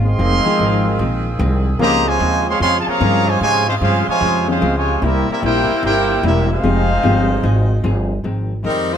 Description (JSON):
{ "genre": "jazz", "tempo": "149 BPM", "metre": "4/4", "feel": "swing 66% on 8ths", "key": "F minor", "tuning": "A4 = 440 Hz", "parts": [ { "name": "clear trumpet section", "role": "melody", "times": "0.0-7.8 s", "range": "C4 to C6", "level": "-18 LUFS", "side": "equal", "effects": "none" }, { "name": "clear trombone section", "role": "second line", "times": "0.0-7.8 s", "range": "C3 to G4", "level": "-22 LUFS", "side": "right 2 dB", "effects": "none" }, { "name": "vintage hollow-body jazz guitar", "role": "accompaniment", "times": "0.0-8.9 s", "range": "F2 to Ab4", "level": "-24 LUFS", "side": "left 3 dB", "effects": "none" }, { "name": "warm saxophone section", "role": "sustained chords", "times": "0.0-8.2 s", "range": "C3 to Ab4", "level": "-26 LUFS", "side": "right 2 dB", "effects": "none" }, { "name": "upright bass", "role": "bass", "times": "0.0-9.0 s", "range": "E1 to Ab2", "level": "-18 LUFS", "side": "equal", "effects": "none" }, { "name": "warm concert grand piano", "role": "accompaniment", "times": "0.4-7.3 s", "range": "F3 to G5", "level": "-22 LUFS", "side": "left 4 dB", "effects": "none" }, { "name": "clear saxophone section", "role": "melody", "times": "8.7-9.0 s", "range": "G3 to C5", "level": "-17 LUFS", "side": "left 2 dB", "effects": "none" } ], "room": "light reverb", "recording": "none", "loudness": "-14 LUFS", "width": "side -8 dB against mid", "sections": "0.0-8.2 A section", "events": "none", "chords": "0.2 Fm7; 1.8 Dbmaj7; 5.0 C7; 6.6 Fm7" }